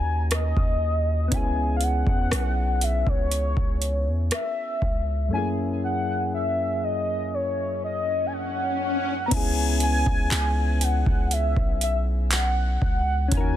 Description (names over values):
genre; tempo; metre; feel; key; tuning
contemporary R&B; 60 BPM; 4/4; straight; C# dorian; A4 = 443 Hz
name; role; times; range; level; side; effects
warm velvety synth lead; melody; 0.0-13.6 s; C#5 to A#5; -27 LUFS; left 1 dB; chorus, ping-pong delay
soft electric-piano-like synth keys; accompaniment; 0.0-13.6 s; F#2 to A#4; -31 LUFS; left 2 dB; chorus
long sustained 808-style bass; bass; 0.0-13.6 s; B1 to E2; -24 LUFS; equal; none
booming analog drum machine; drums; 0.3-13.6 s; crash cymbal, handclaps, hi-hat, kick drum, rim click; -25 LUFS; equal; overdrive
swell; sound effects; 8.0-9.3 s; none; -30 LUFS; left 2 dB; none
room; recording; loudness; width
digital ambience; dense, heavily limited modern master; -22 LUFS; side -12 dB against mid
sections
0.0-9.3 A section; 9.3-13.6 B section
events
swell 8.0-9.3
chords
0.0 D#m7; 1.3 C#m7; 5.3 F#7; 9.3 C#m7